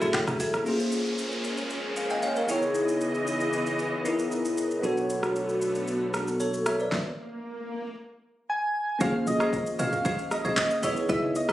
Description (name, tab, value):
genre	amapiano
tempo	115 BPM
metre	4/4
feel	straight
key	unclear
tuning	A4 = 442 Hz
part	soft struck synth lead	melody	0.0-0.1, 8.5-11.5 s	Db5 to Ab5	-29 LUFS	right 1 dB	chorus, ping-pong delay
part	bell-like tine electric piano	accompaniment	0.0-11.5 s	A3 to Ab5	-28 LUFS	left 1 dB	phaser
part	warm studio string section	sustained chords	0.0-6.9 s	Db3 to Ab5	-33 LUFS	right 1 dB	sidechain pumping
part	buzzing marimba with hard mallets	stabs	0.0-0.6, 9.0-11.5 s	Db4 to Fb5	-31 LUFS	equal	ping-pong delay
part	deep log drum bass	bass	0.0-0.6, 9.0-11.5 s	Gb1 to Bb2	-34 LUFS	equal	none
part	deep house drum kit	drums	0.0-11.5 s	handclaps, hi-hat, kick drum, rim click, shaker, snare drum, toms	-32 LUFS	equal	vintage 12-bit sampler grit
part	downlifter and swell	sound effects	0.7-8.0 s	none	-37 LUFS	equal	none
part	modern bright fingered electric bass	bass	4.8-6.9 s	B1	-35 LUFS	equal	none
room	light reverb, digital ambience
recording	recorded on a phone in the room, studio reverb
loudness	-25 LUFS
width	side -14 dB against mid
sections	0.7-9.0 A section; 9.0-11.5 B section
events	swell 6.5-9.0; stop 6.9-9.0; drop 9.0-11.5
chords	0.0 Gbm9; 0.7 Bbm9; 2.5 Dbm9; 4.8 Bm9; 6.9 N.C.; 9.0 Bbm9; 10.8 Dbm9